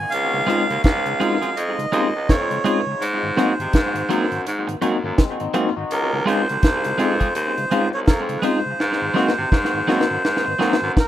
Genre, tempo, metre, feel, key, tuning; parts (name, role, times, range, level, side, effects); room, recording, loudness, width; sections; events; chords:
lovers rock reggae; 83 BPM; 4/4; swing 60% on 16ths; Db major; A4 = 436 Hz
melodica; melody; 0.0-11.1 s; Bb4 to Ab5; -23 LUFS; right 1 dB; tape echo
mellow tonewheel organ; accompaniment; 0.0-10.9 s; Ab2 to Gb4; -31 LUFS; left 1 dB; chorus vibrato, slow rotary speaker, dub echo
clear baritone saxophone; bass; 0.1-11.0 s; C2 to C3; -25 LUFS; equal
deep reggae drum kit; drums; 0.1-11.1 s; hi-hat, kick drum, snare drum; -21 LUFS; equal; dub echo
bell-like tine electric piano; accompaniment; 0.5-10.8 s; Ab3 to Gb4; -24 LUFS; left 2 dB; fast stereo tremolo, dub echo
twelve-string electric guitar; stabs; 0.5-10.7 s; Gb3 to Ab4; -28 LUFS; right 4 dB; dub echo
electric guitar through a small old amp; arpeggios; 5.0-6.1 s; Gb3 to Gb4; -28 LUFS; left 7 dB
moderate studio reverb, RT60 0.6 s; rough home demo mix; -18 LUFS; side -12 dB against mid
0.0-11.1 A section
drum fill 8.8-11.1
0.1 Dbmaj7; 3.0 Ab7; 5.9 Dbmaj7; 8.8 Ab7